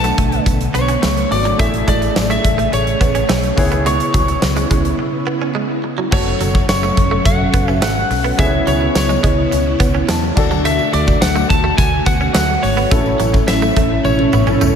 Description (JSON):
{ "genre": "1980s-style pop", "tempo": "106 BPM", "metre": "4/4", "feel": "straight", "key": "F# minor", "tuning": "A4 = 441 Hz", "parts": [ { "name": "lightly driven lead guitar", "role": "melody", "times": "0.0-14.8 s", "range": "C#5 to A5", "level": "-20 LUFS", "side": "equal", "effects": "wide subtle chorus, diffuse ambient delay" }, { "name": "clear baby grand piano", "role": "accompaniment", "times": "0.0-14.8 s", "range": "A3 to A5", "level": "-25 LUFS", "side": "left 3 dB", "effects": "lush chorus" }, { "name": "string machine, violas", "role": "sustained chords", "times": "0.0-14.8 s", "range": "C#3 to A4", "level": "-21 LUFS", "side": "right 1 dB", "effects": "ensemble chorus" }, { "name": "direct-recorded clean electric guitar", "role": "riff", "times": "0.0-14.7 s", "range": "F#3 to C#4", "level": "-24 LUFS", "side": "right 5 dB", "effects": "lush chorus, diffuse ambient delay" }, { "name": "vintage muted fingered electric bass", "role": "bass", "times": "0.0-14.8 s", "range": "F#1 to E2", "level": "-20 LUFS", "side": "equal", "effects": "none" }, { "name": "huge arena drum kit", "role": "drums", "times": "0.0-14.7 s", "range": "crash cymbal, hi-hat, kick drum, snare drum, tambourine, toms", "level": "-18 LUFS", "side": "equal", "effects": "none" }, { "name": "tambourine", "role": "percussion", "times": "0.0-14.7 s", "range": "none", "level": "-36 LUFS", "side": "left 8 dB", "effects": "none" }, { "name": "mellow synth brass", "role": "stabs", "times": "13.5-14.8 s", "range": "C#4 to A4", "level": "-20 LUFS", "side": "right 4 dB", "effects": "chorus, diffuse ambient delay" } ], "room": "wet lush hall reverb, RT60 2.4 s", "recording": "dreamy mix soaked in reverb", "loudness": "-13 LUFS", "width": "side -7 dB against mid", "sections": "0.0-6.1 A section; 6.1-14.8 B section", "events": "break 5.0-6.1; grand piano fill 9.8-10.7; band accent 12.9-14.8; drum fill 14.0-14.8", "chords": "0.0 Bm7; 1.6 Amaj7; 3.6 C#m7; 6.1 F#m; 8.4 C#m7; 10.4 D; 12.9 A", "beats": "0.46 1.03 | 1.59 2.16 2.73 3.29 | 3.86 4.42 4.99 5.56 | 6.12 6.69 7.25 7.82 | 8.39 8.95 9.52 10.09 | 10.65 11.22 11.78 12.35 | 12.92 13.48 14.05 14.61" }